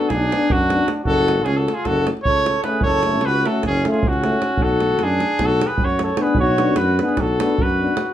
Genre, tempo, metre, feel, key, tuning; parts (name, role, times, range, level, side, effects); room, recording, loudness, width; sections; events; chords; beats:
balkan folk, Balkan brass band; 305 BPM (eighths); 9/8; straight; A4 = 440 Hz
warm trumpet; melody; 0.0-8.1 s; F#4 to C#5; -21 LUFS; equal
warm flugelhorn; second line; 0.0-8.1 s; C#4 to A4; -24 LUFS; left 2 dB
dark French horn; accompaniment; 0.0-7.9 s; C#4 to D4; -25 LUFS; left 4 dB
warm euphonium; accompaniment; 0.0-7.9 s; A3 to B3; -26 LUFS; right 1 dB
davul; percussion; 0.0-8.1 s; -24 LUFS; right 2 dB
mellow tuba; bass; 0.1-7.9 s; F#1 to F#2; -22 LUFS; equal
wet studio ambience, RT60 0.5 s; heard from further back in the room; -16 LUFS; side -11 dB against mid
0.0-8.1 A section
0.0 Bm; 1.1 F#m; 4.6 Bm
0.08 0.27 0.47 0.67 0.86 | 1.06 1.25 1.45 1.65 1.84 2.04 2.23 2.43 2.62 | 2.82 3.02 3.21 3.41 3.61 3.80 4.00 4.20 4.39 | 4.59 4.79 4.98 5.18 5.38 5.57 5.77 5.97 6.16 | 6.36 6.56 6.75 6.95 7.15 7.35 7.54 7.74 7.94